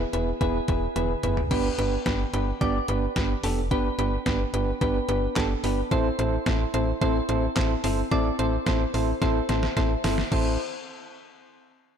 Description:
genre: synth-pop.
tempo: 109 BPM.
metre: 4/4.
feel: straight.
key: A minor.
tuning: A4 = 439 Hz.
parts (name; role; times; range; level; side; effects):
soft electric-piano-like synth keys; accompaniment; 0.0-10.6 s; B3 to D5; -26 LUFS; right 1 dB; chorus, tremolo.
slap-like FM bass; bass; 0.0-10.6 s; E1 to A1; -28 LUFS; equal; none.
detuned 8-bit digital drum machine; drums; 0.1-10.4 s; crash cymbal, handclaps, hi-hat, kick drum, snare drum, toms; -29 LUFS; equal; overdrive.
room: light reverb.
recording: blown-out, overdriven recording, overdrive.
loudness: -23 LUFS.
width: side -8 dB against mid.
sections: 0.0-1.5 A section; 1.5-10.3 B section; 10.3-12.0 C section.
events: drum fill 1.0-1.5, 9.2-10.3.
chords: 0.0 E; 1.5 G; 5.9 Am.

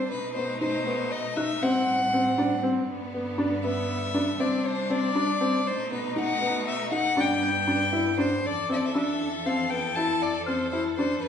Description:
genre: contemporary instrumental, chamber music in an uneven meter.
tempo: 237 BPM (eighths).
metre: 11/8.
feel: straight.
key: unclear.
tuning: A4 = 440 Hz.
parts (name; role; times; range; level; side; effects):
rich violin; melody; 0.0-11.3 s; B4 to A5; -28 LUFS; left 2 dB; none.
bright studio string section; sustained chords; 0.0-11.3 s; F2 to B4; -32 LUFS; right 1 dB; none.
clear baby grand piano; arpeggios; 0.4-11.1 s; B3 to E4; -27 LUFS; left 1 dB; none.
small celesta; texture; 1.4-1.8, 7.4-11.3 s; E6 to G6; -37 LUFS; left 2 dB; none.
room: wet recital hall reverb, RT60 1.5 s.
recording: recorded in a church or concert hall, nothing above 10.3 kHz.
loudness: -24 LUFS.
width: side -8 dB against mid.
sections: 0.0-8.4 A section; 8.4-11.3 B section.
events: none.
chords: 0.1 B7; 1.6 Am7; 2.9 G; 4.4 Csus2; 5.7 B7; 7.2 G; 8.4 Fmaj7.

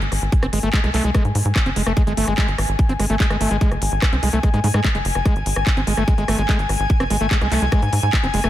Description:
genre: psychedelic trance.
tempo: 146 BPM.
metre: 4/4.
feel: straight.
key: unclear.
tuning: A4 = 440 Hz.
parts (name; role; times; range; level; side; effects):
tight sequencer bass; bass; 0.0-8.5 s; F#1 to G#2; -21 LUFS; equal; none.
drum and bass drum kit; drums; 0.0-8.5 s; handclaps, hi-hat, rim click; -25 LUFS; left 1 dB; none.
airy breathy pad; texture; 0.0-8.5 s; G#5; -26 LUFS; left 2 dB; chorus, sidechain pumping.
electronic kick drum; drums; 0.3-8.2 s; none; -18 LUFS; equal; none.
screaming distorted acid line; riff; 0.4-8.5 s; G#3 to B#3; -24 LUFS; equal; distortion, chorus, auto-pan, sidechain pumping, dub echo.
room: light reverb, digital ambience.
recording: none.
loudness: -16 LUFS.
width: side -13 dB against mid.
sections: 0.0-8.5 A section.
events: none.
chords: 0.0 G#5.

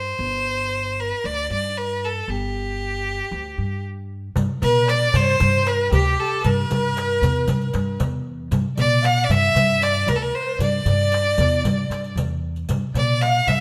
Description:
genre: Arabic maqam ensemble.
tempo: 115 BPM.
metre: 4/4.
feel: straight.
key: G maqam rast.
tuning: A4 = 440 Hz.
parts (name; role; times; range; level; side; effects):
bright violin; melody; 0.0-13.6 s; G4 to F#5-48c; -24 LUFS; equal; none.
upright bass; bass; 0.0-13.6 s; G1 to Bb2+50c; -26 LUFS; equal; none.
darbuka; percussion; 4.4-13.6 s; none; -27 LUFS; equal; none.
riq; percussion; 4.4-13.6 s; none; -36 LUFS; equal; none.
breathy reedy ney; second line; 4.6-13.6 s; G4 to F#5-39c; -29 LUFS; equal; none.
rich studio violin section; second line; 4.6-13.6 s; G4 to F#5-50c; -34 LUFS; equal; none.
room: light reverb.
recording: none.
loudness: -21 LUFS.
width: mono.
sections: 0.0-4.4 A section; 4.4-13.6 B section.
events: none.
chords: none.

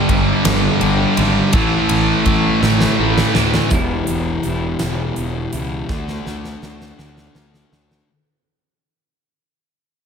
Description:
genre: quiet-loud alternative rock.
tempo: 55 BPM (dotted quarters).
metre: 6/8.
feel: straight.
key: E minor.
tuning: A4 = 439 Hz.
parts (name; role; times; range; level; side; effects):
heavy high-gain guitar; riff; 0.0-3.7 s; G2 to A3; -21 LUFS; equal; distortion.
thick fuzz guitar; riff; 0.0-8.1 s; E2 to D4; -20 LUFS; left 10 dB; distortion.
thick fuzz guitar; riff; 0.0-3.7 s; G2 to A3; -19 LUFS; right 15 dB; distortion.
fuzz fingered electric bass; bass; 0.1-8.0 s; E1 to D2; -22 LUFS; right 1 dB; overdrive.
huge arena drum kit; drums; 0.1-8.1 s; hi-hat, kick drum, ride cymbal, snare drum; -21 LUFS; equal; none.
electric guitar through a small old amp; arpeggios; 3.7-8.1 s; E2 to F#4; -28 LUFS; right 3 dB; harmonic tremolo.
room: light reverb.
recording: none.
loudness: -14 LUFS.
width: side -6 dB against mid.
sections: 0.0-3.7 A section; 3.7-8.1 B section.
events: drum fill 2.6-3.7, 5.9-8.1; fade-out 3.7-8.1.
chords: 0.0 G5; 1.5 A5; 3.7 Em; 5.9 D.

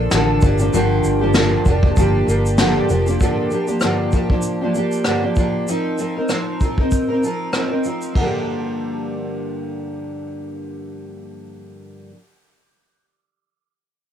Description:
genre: acoustic pop.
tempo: 97 BPM.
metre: 4/4.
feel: swing 55% on 16ths.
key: G minor.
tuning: A4 = 440 Hz.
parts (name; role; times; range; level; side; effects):
picked steel-string acoustic guitar; accompaniment; 0.0-12.2 s; G2 to Bb4; -19 LUFS; equal; double-tracked left and right, cassette tape.
vintage muted fingered electric bass; bass; 0.0-3.2 s; F1 to A1; -19 LUFS; equal; none.
vintage brush drum kit; drums; 0.1-8.3 s; kick drum, ride cymbal, rim click, shaker, snare drum; -20 LUFS; equal; cassette tape.
room: small room ambience.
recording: home recording on cassette.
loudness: -16 LUFS.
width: side -9 dB against mid.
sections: 0.0-3.2 A section; 3.2-8.2 B section; 8.2-10.6 C section.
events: none.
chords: 0.4 Gm7; 5.7 F7sus4; 8.2 Gm7.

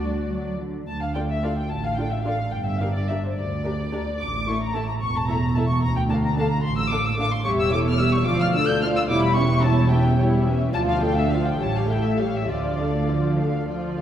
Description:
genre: quick classical-period movement for string orchestra.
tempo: 72 BPM (dotted quarters).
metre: 6/8.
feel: rubato.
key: D minor.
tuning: A4 = 440 Hz.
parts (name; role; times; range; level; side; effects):
muted symphonic violin section; melody; 0.0-13.4 s; C5 to G6; -27 LUFS; left 3 dB; none.
muted symphonic violin section; second line; 0.0-14.0 s; D4 to F5; -31 LUFS; left 3 dB; none.
muted symphonic viola section; accompaniment; 0.0-14.0 s; E3 to G4; -27 LUFS; equal; none.
muted studio double bass section; bass; 0.0-14.0 s; E1 to D2; -25 LUFS; right 1 dB; none.
muted symphonic cello section; bass; 0.0-14.0 s; D2 to G3; -27 LUFS; right 2 dB; none.
room: wet concert hall reverb, RT60 1.9 s.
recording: heard from further back in the room.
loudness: -20 LUFS.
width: side -10 dB against mid.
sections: 0.9-14.0 A section.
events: none.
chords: 0.0 D; 0.9 Dm; 2.5 G5; 4.2 A5; 5.8 D5; 7.5 A7/E; 8.3 Dm; 9.1 C#dim/E; 10.7 Dm; 11.6 A7; 12.5 Dm.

